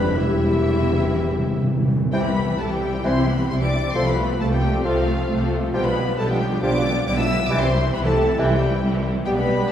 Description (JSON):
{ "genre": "classical", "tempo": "121-138 BPM", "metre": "4/4", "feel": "rubato", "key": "C major", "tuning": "A4 = 440 Hz", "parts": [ { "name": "clear symphonic violin section", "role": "melody", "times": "0.0-9.7 s", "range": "E5 to E6", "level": "-30 LUFS", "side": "left 3 dB", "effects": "none" }, { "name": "flute section", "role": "second line", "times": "0.0-9.7 s", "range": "E4 to E5", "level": "-27 LUFS", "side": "left 1 dB", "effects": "none" }, { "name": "warm clarinet", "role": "second line", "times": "0.0-9.7 s", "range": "E4 to C5", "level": "-31 LUFS", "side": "left 1 dB", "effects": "none" }, { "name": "warm symphonic violin section", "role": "second line", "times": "0.0-9.7 s", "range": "A3 to B4", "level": "-30 LUFS", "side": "left 2 dB", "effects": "none" }, { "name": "rich symphonic viola section", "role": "accompaniment", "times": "0.0-9.7 s", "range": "D3 to C4", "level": "-27 LUFS", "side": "equal", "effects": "none" }, { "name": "mellow French horn section", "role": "sustained chords", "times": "0.0-9.7 s", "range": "F3 to G4", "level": "-27 LUFS", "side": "left 2 dB", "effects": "none" }, { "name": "clear symphonic double bass section", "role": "bass", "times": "0.0-9.7 s", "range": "E1 to C2", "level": "-26 LUFS", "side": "right 1 dB", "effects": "none" }, { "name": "mellow tuba", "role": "bass", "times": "0.0-1.9 s", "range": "E1 to F1", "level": "-29 LUFS", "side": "right 1 dB", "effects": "none" }, { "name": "rich symphonic cello section", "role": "bass", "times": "0.0-9.7 s", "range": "E2 to C3", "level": "-28 LUFS", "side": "right 1 dB", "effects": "none" }, { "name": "timpani", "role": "percussion", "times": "0.2-4.6 s", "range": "C3", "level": "-25 LUFS", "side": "equal", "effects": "none" }, { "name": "mellow bassoon", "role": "accompaniment", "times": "2.1-9.7 s", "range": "E3 to G3", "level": "-28 LUFS", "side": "equal", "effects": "none" } ], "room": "wet scoring stage reverb, RT60 1.8 s", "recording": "heard from further back in the room", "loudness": "-18 LUFS", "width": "side -9 dB against mid", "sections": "0.0-2.1 A section; 2.1-9.7 B section", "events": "timpani fill 0.2-2.1", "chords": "0.2 C/E; 2.1 C; 4.0 F/C; 5.7 G7/B; 7.5 C" }